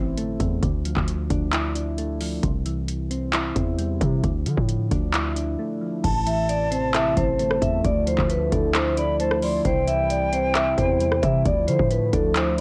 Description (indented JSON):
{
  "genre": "hip hop, trap",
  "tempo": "133 BPM",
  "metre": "4/4",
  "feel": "half-time",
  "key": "unclear",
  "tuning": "A4 = 441 Hz",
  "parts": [
    { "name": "soft electric-piano-like synth keys", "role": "accompaniment", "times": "0.0-12.6 s", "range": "A2 to E4", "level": "-30 LUFS", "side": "equal", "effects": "chorus, cassette tape" },
    { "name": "hard-hitting 808-style bass", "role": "bass", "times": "0.0-12.6 s", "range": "G1 to D3", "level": "-28 LUFS", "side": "equal", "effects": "none" },
    { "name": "booming analog drum machine", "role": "drums", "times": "0.2-12.6 s", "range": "crash cymbal, handclaps, hi-hat, kick drum, rim click", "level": "-28 LUFS", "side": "equal", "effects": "cassette tape" },
    { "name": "vibraphone with medium mallets", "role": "melody", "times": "6.0-12.6 s", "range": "A4 to A5", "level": "-26 LUFS", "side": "equal", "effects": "cassette tape" },
    { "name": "breathy mellow jazz flute", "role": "second line", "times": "6.0-12.6 s", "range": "G5 to C6", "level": "-33 LUFS", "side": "equal", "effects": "cassette tape, tape echo" },
    { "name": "hollow soft pad", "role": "sustained chords", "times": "6.0-12.6 s", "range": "C3 to E4", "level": "-32 LUFS", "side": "equal", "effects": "chorus, cassette tape" }
  ],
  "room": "little or no reverb",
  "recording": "home recording on cassette",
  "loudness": "-23 LUFS",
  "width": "mono",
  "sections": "0.0-6.0 A section; 6.0-12.6 B section",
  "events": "break 5.6-6.0",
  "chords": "0.0 Am; 0.6 Dmadd9; 2.4 C; 4.2 Dmadd9; 6.0 Am; 7.8 Dmadd9; 9.7 C; 11.5 Dmadd9"
}